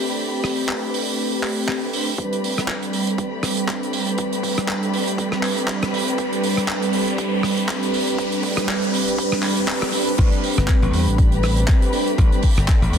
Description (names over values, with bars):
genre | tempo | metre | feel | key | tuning
nu-disco, nu disco | 120 BPM | 4/4 | swing 56% on 16ths | A minor | A4 = 439 Hz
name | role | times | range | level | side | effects
mellow synth brass | accompaniment | 0.0-13.0 s | G3 to B4 | -22 LUFS | right 1 dB | chorus, sidechain pumping, tape echo
warm studio violin section | sustained chords | 0.0-13.0 s | A3 to B5 | -29 LUFS | left 2 dB | sidechain pumping
damped 70s drum kit | drums | 0.4-13.0 s | crash cymbal, handclaps, hi-hat, rim click | -25 LUFS | right 2 dB | none
electronic kick drum | drums | 2.2-12.8 s | none | -18 LUFS | equal | high-pass filter on kick
riser | sound effects | 4.0-10.2 s | none | -32 LUFS | left 1 dB | none
slap bass | bass | 10.2-13.0 s | G1 to E2 | -19 LUFS | equal | none
room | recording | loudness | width
moderate plate reverb, RT60 1.6 s, small room reverb | dense, heavily limited modern master | -18 LUFS | side -8 dB against mid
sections
0.0-2.2 A section; 2.2-10.2 B section; 10.2-13.0 C section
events
build-up 2.2-10.2; riser 4.0-10.2; drop 10.2-13.0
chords
0.0 Am11